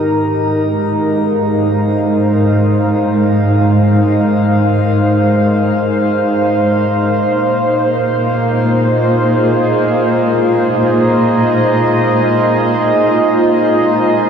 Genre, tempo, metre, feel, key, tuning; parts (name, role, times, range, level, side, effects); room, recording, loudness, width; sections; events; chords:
ambient; free time; Ab major; A4 = 440 Hz
warbly tape-like pad; sustained chords; 0.0-14.3 s; Ab3 to Bb5; -12 LUFS; equal; chorus, built-in reverb, shimmer reverb
dark studio cello section; bass; 0.0-14.3 s; Ab2 to Bb2; -17 LUFS; equal
overtone-sweeping drone; drone; 8.0-14.3 s; Ab3 to Eb4; -18 LUFS; right 2 dB; chorus, built-in reverb
wet concert hall reverb, RT60 2.0 s; lossy compression artefacts; -11 LUFS; side -7 dB against mid
0.0-14.3 A section
0.0 Ab6; 7.3 Bb7sus4